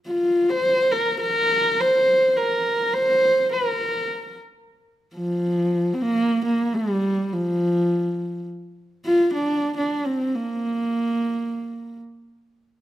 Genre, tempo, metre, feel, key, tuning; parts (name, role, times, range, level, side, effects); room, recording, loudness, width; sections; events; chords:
mongolian traditional; free time; Bb gong mode; A4 = 439 Hz
dark horsehead fiddle; solo; 0.1-12.0 s; F3 to C5; -20 LUFS; equal
moderate recital hall reverb, RT60 1.5 s; close, detailed microphones; -19 LUFS; side -14 dB against mid
0.0-4.7 A section; 4.7-12.8 B section